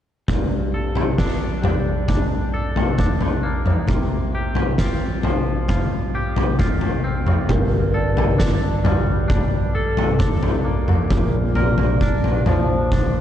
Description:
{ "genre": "post-rock", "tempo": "67 BPM", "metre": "4/4", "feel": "straight", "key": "G minor", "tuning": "A4 = 441 Hz", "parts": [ { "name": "twangy electric guitar", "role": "arpeggios", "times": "0.3-13.2 s", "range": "G2 to Bb4", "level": "-27 LUFS", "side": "left 1 dB", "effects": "lush chorus, analog delay" }, { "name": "oversized low-tuned drum kit", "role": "drums", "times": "0.3-13.1 s", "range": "kick drum, snare drum, toms", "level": "-19 LUFS", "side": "equal", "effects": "vintage 12-bit sampler grit" }, { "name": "vibraphone with medium mallets", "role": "arpeggios", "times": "7.5-13.2 s", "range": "A4 to D5", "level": "-27 LUFS", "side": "right 1 dB", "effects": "analog delay" }, { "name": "overdriven picked electric bass", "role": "bass", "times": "7.5-13.2 s", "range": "G1 to Bb1", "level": "-24 LUFS", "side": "equal", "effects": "none" } ], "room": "moderate lush hall reverb, RT60 2.7 s", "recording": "dreamy mix soaked in reverb, cassette tape", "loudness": "-17 LUFS", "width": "side -10 dB against mid", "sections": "0.3-13.2 A section", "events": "none", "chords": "0.3 Gmadd9; 3.9 Csus4; 7.5 Gmadd9; 11.1 Bb" }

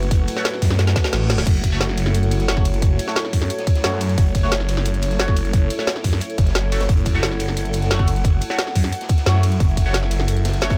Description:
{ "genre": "dark technical drum and bass", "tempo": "177 BPM", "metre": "4/4", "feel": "straight", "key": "F# minor", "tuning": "A4 = 444 Hz", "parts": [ { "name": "dark analog pad", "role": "sustained chords", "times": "0.0-10.8 s", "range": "A3 to F#5", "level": "-32 LUFS", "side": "equal", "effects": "chorus, sidechain pumping" }, { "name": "phased detuned saw bass", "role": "bass", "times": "0.0-10.8 s", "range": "F#1 to F#2", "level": "-22 LUFS", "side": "equal", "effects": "phaser, overdrive" }, { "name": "drum and bass drum kit", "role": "drums", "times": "0.0-10.8 s", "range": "crash cymbal, hi-hat, ride cymbal, snare drum", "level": "-28 LUFS", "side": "equal", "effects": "none" }, { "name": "granular cloud pad", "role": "texture", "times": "0.0-10.8 s", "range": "E4 to F#5", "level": "-33 LUFS", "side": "equal", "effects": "built-in reverb, sidechain pumping" }, { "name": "crunchy breakbeat drum kit", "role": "drums", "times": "0.1-10.8 s", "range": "hi-hat, snare drum", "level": "-38 LUFS", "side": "equal", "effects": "none" }, { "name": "electronic kick drum", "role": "drums", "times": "0.1-10.8 s", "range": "none", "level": "-20 LUFS", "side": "equal", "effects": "none" }, { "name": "band-passed chord stab", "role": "stabs", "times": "0.4-10.8 s", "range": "A3 to C#5", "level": "-32 LUFS", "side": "equal", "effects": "phaser, tape echo" }, { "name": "reverse cymbal", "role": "sound effects", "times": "1.2-1.5 s", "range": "none", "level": "-36 LUFS", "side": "equal", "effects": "none" } ], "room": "digital ambience", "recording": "none", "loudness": "-19 LUFS", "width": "mono", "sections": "0.0-10.8 A section", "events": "drum fill 0.8-1.5; reverse cymbal 1.2", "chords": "0.0 F#m" }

